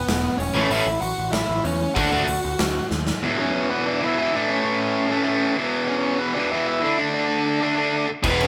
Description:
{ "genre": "punk rock", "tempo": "191 BPM", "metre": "4/4", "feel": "straight", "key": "unclear", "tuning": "A4 = 440 Hz", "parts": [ { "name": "smooth overdriven lead guitar", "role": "melody", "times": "0.0-8.5 s", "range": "B3 to F#5", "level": "-27 LUFS", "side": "equal", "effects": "none" }, { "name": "growling picked electric bass", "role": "bass", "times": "0.1-3.1, 8.2-8.5 s", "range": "E1 to E2", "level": "-30 LUFS", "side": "equal", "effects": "overdrive" }, { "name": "big rock drum kit", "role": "drums", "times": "0.1-3.1, 8.2-8.5 s", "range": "crash cymbal, hi-hat, kick drum, snare drum", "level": "-29 LUFS", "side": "equal", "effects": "none" }, { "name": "overdriven electric guitar", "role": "riff", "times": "0.5-2.3, 8.2-8.5 s", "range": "A2 to F#4", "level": "-27 LUFS", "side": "equal", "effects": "none" }, { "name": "distorted electric guitar", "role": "riff", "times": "0.6-8.5 s", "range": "E2 to D4", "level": "-24 LUFS", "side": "equal", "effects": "overdrive" } ], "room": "moderate large studio reverb, RT60 1.4 s", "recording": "band playing live in one room", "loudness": "-22 LUFS", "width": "mono", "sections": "0.0-3.2 A section; 3.2-8.5 B section", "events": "half time 0.0-3.2; drum fill 2.9-3.2", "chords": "0.0 E5; 0.6 A; 2.0 D; 3.2 E5; 4.3 A; 5.6 E5; 6.8 D5", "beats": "0.08 0.40 | 0.71 1.02 1.34 1.65 | 1.97 2.28 2.60 2.91 | 3.22 3.54 3.85 4.16 | 4.47 4.79 5.10 5.42 | 5.73 6.04 6.36 6.67 | 6.99 7.30 7.62 7.93 | 8.24" }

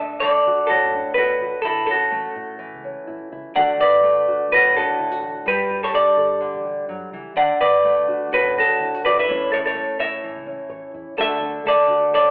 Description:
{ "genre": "highlife guitar band", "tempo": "126 BPM", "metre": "4/4", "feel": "swing 55% on 16ths", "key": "D major", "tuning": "A4 = 440 Hz", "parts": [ { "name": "semi-hollow electric guitar", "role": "melody", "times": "0.0-12.3 s", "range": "E4 to F#5", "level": "-16 LUFS", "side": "equal", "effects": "none" }, { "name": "nylon-string guitar", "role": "accompaniment", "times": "0.0-12.3 s", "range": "A2 to C#5", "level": "-28 LUFS", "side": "equal", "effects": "none" }, { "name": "vintage muted fingered electric bass", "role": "bass", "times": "0.0-12.3 s", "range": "G1 to D3", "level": "-45 LUFS", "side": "equal", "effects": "none" } ], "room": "wet large studio reverb, RT60 1.4 s", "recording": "band playing live in one room, telephone sound", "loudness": "-16 LUFS", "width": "side -37 dB against mid", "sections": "0.0-12.3 A section", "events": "none", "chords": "0.0 D; 1.6 A; 3.6 D; 5.5 Gsus2; 7.4 D; 9.3 A; 11.2 D", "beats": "0.21 0.69 1.17 | 1.65 2.12 2.60 3.08 | 3.56 4.03 4.51 4.99 | 5.46 5.94 6.42 6.89 | 7.37 7.85 8.32 8.80 | 9.28 9.75 10.23 10.70 | 11.18 11.65 12.13" }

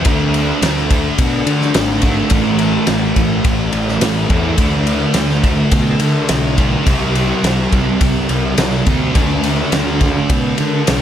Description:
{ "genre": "rock, shoegaze and dream pop", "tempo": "106 BPM", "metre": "4/4", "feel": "straight", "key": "unclear", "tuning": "A4 = 440 Hz", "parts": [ { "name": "thick fuzz guitar", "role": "riff", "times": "0.0-11.0 s", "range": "A2 to D4", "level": "-16 LUFS", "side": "right 1 dB", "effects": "distortion, lush chorus" }, { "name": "fuzz picked electric bass", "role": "bass", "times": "0.0-11.0 s", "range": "G#1 to D3", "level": "-19 LUFS", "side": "equal", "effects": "overdrive" }, { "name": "loose indie drum kit", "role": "drums", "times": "0.0-11.0 s", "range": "kick drum, ride cymbal, snare drum", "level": "-17 LUFS", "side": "equal", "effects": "none" } ], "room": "moderate lush hall reverb, RT60 1.9 s, small room ambience", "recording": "dreamy mix soaked in reverb", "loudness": "-13 LUFS", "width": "side -10 dB against mid", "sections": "0.0-11.0 A section", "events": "none", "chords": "0.1 D5; 2.3 A5; 4.6 D5; 6.9 C5; 9.2 D5", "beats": "| 0.06 0.63 1.19 1.76 | 2.32 2.89 3.46 4.02 | 4.59 5.16 5.73 6.30 | 6.87 7.44 8.01 8.58 | 9.15 9.73 10.30 10.88" }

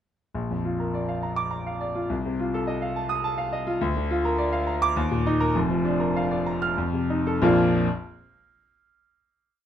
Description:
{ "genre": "classical, virtuoso piano study", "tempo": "90-106 BPM", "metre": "3/4", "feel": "rubato", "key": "Bb major", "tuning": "A4 = 438 Hz", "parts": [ { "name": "clear concert grand piano", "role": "solo", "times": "0.3-7.9 s", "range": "F1 to F6", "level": "-22 LUFS", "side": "equal", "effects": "none" } ], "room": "light reverb", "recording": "dark, warm production", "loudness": "-23 LUFS", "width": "side -10 dB against mid", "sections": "0.3-7.4 A section; 7.4-9.3 final chord", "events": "slowing down 3.0-7.4", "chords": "0.3 Bb; 2.1 F7/C; 3.8 Bb/D; 5.0 Eb5; 5.5 Bb/F; 6.8 F7; 7.4 Bb", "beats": "| 0.35 0.94 1.53 | 2.11 2.68 3.25 | 3.83 4.39 4.96 | 5.55 6.14 6.76 | 7.41" }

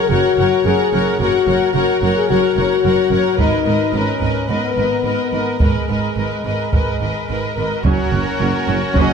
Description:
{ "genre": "cinematic, epic orchestral film score", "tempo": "109 BPM", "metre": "4/4", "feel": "straight", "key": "F# major", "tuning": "A4 = 442 Hz", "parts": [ { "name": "rich symphonic violin section", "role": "melody", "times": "0.0-9.1 s", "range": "A#4 to F#5", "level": "-27 LUFS", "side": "left 3 dB", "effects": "none" }, { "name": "rich symphonic violin section", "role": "second line", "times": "0.0-9.1 s", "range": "C#4 to C#5", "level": "-25 LUFS", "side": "left 4 dB", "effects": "none" }, { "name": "warm symphonic viola section", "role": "accompaniment", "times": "0.0-9.1 s", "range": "F#3 to A#4", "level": "-23 LUFS", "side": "equal", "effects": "none" }, { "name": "mellow French horn section", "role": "sustained chords", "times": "0.0-9.1 s", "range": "F#3 to A#4", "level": "-19 LUFS", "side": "left 6 dB", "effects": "none" }, { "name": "rich symphonic cello section", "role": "bass", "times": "0.1-9.0 s", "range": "F#2 to G#2", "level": "-24 LUFS", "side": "right 4 dB", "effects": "none" }, { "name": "warm symphonic double bass section", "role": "bass", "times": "0.1-9.0 s", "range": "F#1 to G#1", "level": "-23 LUFS", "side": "right 5 dB", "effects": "none" }, { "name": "solo taiko drums", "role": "drums", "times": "3.4-9.1 s", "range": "none", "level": "-20 LUFS", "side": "right 1 dB", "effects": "none" }, { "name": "pipe organ, strings celeste", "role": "sustained chords", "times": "7.8-9.1 s", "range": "C#4 to F#5", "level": "-24 LUFS", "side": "right 2 dB", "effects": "none" }, { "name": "mellow tuba", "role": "bass", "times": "7.8-9.1 s", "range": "F#1", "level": "-23 LUFS", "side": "right 6 dB", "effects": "none" } ], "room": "wet scoring stage reverb, RT60 1.8 s", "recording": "none", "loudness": "-14 LUFS", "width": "side -6 dB against mid", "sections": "0.0-7.9 A section; 7.9-9.1 B section", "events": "none", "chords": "0.0 F#; 3.4 G#madd9; 7.9 F#", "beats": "0.11 0.65 | 1.20 1.75 2.29 2.84 | 3.39 3.93 4.48 5.04 | 5.60 6.17 6.73 7.29 | 7.85 8.40 8.96" }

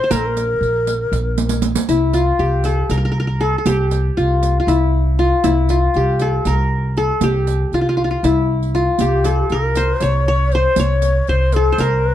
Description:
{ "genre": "Turkish makam ensemble", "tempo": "236 BPM (eighths)", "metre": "7/8", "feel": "straight", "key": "C makam hicaz", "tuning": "A4 = 440 Hz", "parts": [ { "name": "qanun", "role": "melody", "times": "0.0-12.1 s", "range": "E4 to Db5", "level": "-18 LUFS", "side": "left 2 dB", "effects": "plate reverb" }, { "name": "breathy bright low ney", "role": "second line", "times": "0.0-1.6, 9.0-12.1 s", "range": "G4 to Db5", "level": "-20 LUFS", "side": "left 2 dB", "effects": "none" }, { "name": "upright bass", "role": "bass", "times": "0.1-12.1 s", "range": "Bb1 to C2", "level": "-18 LUFS", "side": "equal", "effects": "none" }, { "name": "riq", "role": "percussion", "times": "0.1-11.9 s", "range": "none", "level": "-24 LUFS", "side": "right 5 dB", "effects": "none" } ], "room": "light reverb", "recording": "dark, warm production", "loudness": "-14 LUFS", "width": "side -12 dB against mid", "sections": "0.0-1.9 A section; 1.9-12.1 B section", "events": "drum fill 1.4-1.9", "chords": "none", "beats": "| 0.11 0.36 0.61 0.87 1.12 1.37 1.63 | 1.88 2.13 2.39 2.64 2.89 3.15 3.40 | 3.65 3.91 4.16 4.42 4.67 4.92 5.18 | 5.43 5.69 5.94 6.19 6.45 6.70 6.96 | 7.21 7.46 7.72 7.97 8.23 8.48 8.73 | 8.99 9.24 9.50 9.75 10.00 10.26 10.51 | 10.77 11.02 11.27 11.53 11.78 12.04" }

